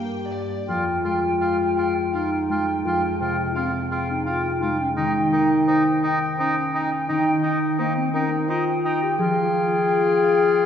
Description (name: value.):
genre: cinematic, emotional film score for orchestra.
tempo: 85 BPM.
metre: 3/4.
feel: rubato.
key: F minor.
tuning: A4 = 440 Hz.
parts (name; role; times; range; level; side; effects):
mellow clarinet; second line; 0.0-10.7 s; Bb3 to Ab4; -23 LUFS; left 1 dB; none.
warm chamber violin section; second line; 0.0-0.7 s; D5 to G5; -36 LUFS; left 2 dB; none.
concert harp; arpeggios; 0.0-10.7 s; F2 to G5; -27 LUFS; left 4 dB; none.
clear oboe; second line; 0.7-10.7 s; Eb4 to F4; -27 LUFS; equal; none.
silver concert flute; second line; 0.7-10.7 s; G5; -26 LUFS; right 1 dB; none.
room: wet scoring stage reverb, RT60 1.6 s.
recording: heard from further back in the room, nothing above 7.8 kHz.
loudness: -19 LUFS.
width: side -8 dB against mid.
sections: 0.7-10.7 A section.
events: none.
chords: 0.0 Gm7; 0.7 Fmadd9; 5.0 Eb6; 9.2 Fmadd9.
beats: | 0.68 1.40 2.12 | 2.85 3.55 4.26 | 4.97 5.67 6.38 | 7.09 7.78 8.48 | 9.18 9.89 10.60.